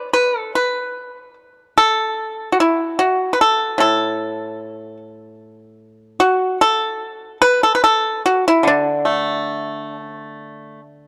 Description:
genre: chinese traditional, Chinese solo plucked strings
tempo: 73 BPM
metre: 4/4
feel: rubato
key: D gong mode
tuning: A4 = 440 Hz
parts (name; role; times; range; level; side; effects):
- pipa; solo; 0.0-11.1 s; A2 to B4; -18 LUFS; equal; none
room: moderate plate reverb, RT60 2.8 s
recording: dark, warm production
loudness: -17 LUFS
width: mono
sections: 0.0-11.1 A section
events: none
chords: none

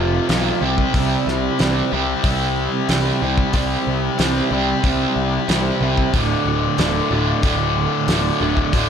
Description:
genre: classic rock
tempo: 92 BPM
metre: 4/4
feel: straight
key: unclear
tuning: A4 = 441 Hz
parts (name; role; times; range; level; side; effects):
- picked steel-string acoustic guitar; accompaniment; 0.0-8.9 s; F2 to F#4; -28 LUFS; right 7 dB; none
- crunchy overdriven guitar; riff; 0.0-8.9 s; D2 to C4; -22 LUFS; right 8 dB; harmonic tremolo
- tight distorted guitar; riff; 0.0-8.9 s; D2 to C4; -22 LUFS; left 7 dB; distortion
- fuzz picked electric bass; bass; 0.0-8.9 s; D1 to C2; -23 LUFS; left 1 dB; overdrive
- cloth-damped thuddy drum kit; drums; 0.3-8.9 s; hi-hat, kick drum, snare drum; -22 LUFS; left 1 dB; none
room: moderate large studio reverb, RT60 1.1 s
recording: none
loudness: -16 LUFS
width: side -7 dB against mid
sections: 0.0-8.9 A section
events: none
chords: 0.0 F; 0.6 C; 6.1 D

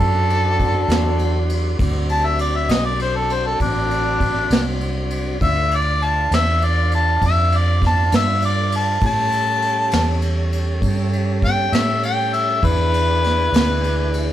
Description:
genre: slow blues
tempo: 66 BPM (dotted quarters)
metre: 12/8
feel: straight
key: unclear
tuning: A4 = 440 Hz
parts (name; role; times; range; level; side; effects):
- clear harmonica; melody; 0.0-14.3 s; D4 to A5; -20 LUFS; left 1 dB; overdrive
- tonewheel organ; sustained chords; 0.0-14.3 s; E3 to C5; -26 LUFS; right 1 dB; slow rotary speaker
- vintage muted fingered electric bass; bass; 0.0-14.3 s; A1 to A2; -20 LUFS; right 1 dB; none
- vintage brush drum kit; drums; 0.0-14.3 s; kick drum, ride cymbal, snare drum; -23 LUFS; equal; none
room: light reverb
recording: band playing live in one room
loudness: -16 LUFS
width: side -12 dB against mid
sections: 0.0-14.3 A section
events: harmonica solo 0.0-14.3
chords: 0.0 D7; 5.4 Dm7; 9.0 A7; 12.6 E7

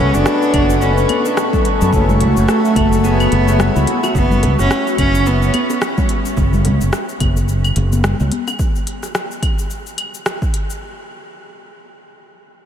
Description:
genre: organic downtempo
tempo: 108 BPM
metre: 4/4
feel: swing 58% on 16ths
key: F# minor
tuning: A4 = 440 Hz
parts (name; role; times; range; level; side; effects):
- warm cello; melody; 0.0-6.1 s; A3 to D4; -18 LUFS; right 1 dB; tape echo, shimmer reverb
- pedal harmonium; accompaniment; 0.0-4.1 s; B2 to G#5; -23 LUFS; left 4 dB; sidechain pumping, analog delay, shimmer reverb
- airy breathy pad; sustained chords; 0.0-6.3 s; F#4 to C#6; -24 LUFS; equal; chorus, phaser, sidechain pumping, shimmer reverb
- concert harp; arpeggios; 0.0-6.5 s; E4 to F#5; -25 LUFS; left 3 dB; analog delay, shimmer reverb
- fretless electric bass; bass; 0.0-8.3 s; F#1 to F#2; -16 LUFS; equal; tube saturation, lush chorus
- afro-pop drum kit; drums; 0.1-10.8 s; cabasa, claves, hi-hat, rim click; -24 LUFS; left 1 dB; none
- electronic kick drum; drums; 0.5-10.5 s; none; -19 LUFS; equal; overdrive
- congas and bongos; percussion; 0.5-8.6 s; none; -26 LUFS; left 4 dB; none
room: moderate huge ambient reverb, RT60 7.6 s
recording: dreamy mix soaked in reverb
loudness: -13 LUFS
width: side -9 dB against mid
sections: 0.0-10.8 A section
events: none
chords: 0.0 Amaj9/F#; 1.9 F#m7

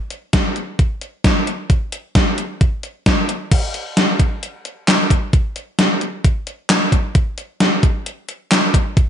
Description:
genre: pop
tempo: 132 BPM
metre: 4/4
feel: straight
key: none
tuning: none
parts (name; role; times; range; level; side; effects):
- gated 80s digital drum machine; drums; 0.1-9.1 s; crash cymbal, handclaps, hi-hat, kick drum, snare drum; -15 LUFS; equal; gated reverb, gated reverb snare, overdrive
room: little or no reverb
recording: nothing above 10.5 kHz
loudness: -15 LUFS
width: side -9 dB against mid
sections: 0.0-3.5 A section; 3.5-9.1 B section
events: none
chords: none

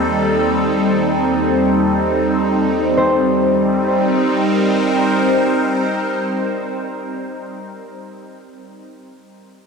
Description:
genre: ambient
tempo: free time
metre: none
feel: none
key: C dorian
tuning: A4 = 441 Hz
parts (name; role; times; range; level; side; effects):
- evolving wavetable pad; sustained chords; 0.0-7.3 s; Eb2 to C5; -16 LUFS; equal; phaser, built-in reverb
- concert harp; arpeggios; 3.0-7.2 s; C5; -23 LUFS; left 3 dB; ping-pong delay
room: wet cathedral reverb, RT60 5.2 s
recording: dark, warm production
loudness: -14 LUFS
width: side -5 dB against mid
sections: 0.0-3.0 A section; 3.0-6.6 B section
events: none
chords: 0.0 Cm/Eb; 3.0 Cm7

